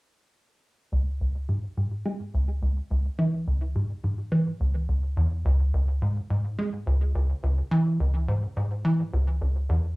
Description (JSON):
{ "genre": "ambient", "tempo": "106 BPM", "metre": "4/4", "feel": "straight", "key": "C# minor", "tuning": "A4 = 441 Hz", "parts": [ { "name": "tight sequencer bass", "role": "solo", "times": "0.9-10.0 s", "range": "C#2 to G#3", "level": "-24 LUFS", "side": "equal", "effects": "analog chorus, cassette tape, tape echo" } ], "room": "wet studio reverb, RT60 0.6 s", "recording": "home recording on cassette", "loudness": "-24 LUFS", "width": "side -24 dB against mid", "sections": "0.9-10.0 A section", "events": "none", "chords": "none" }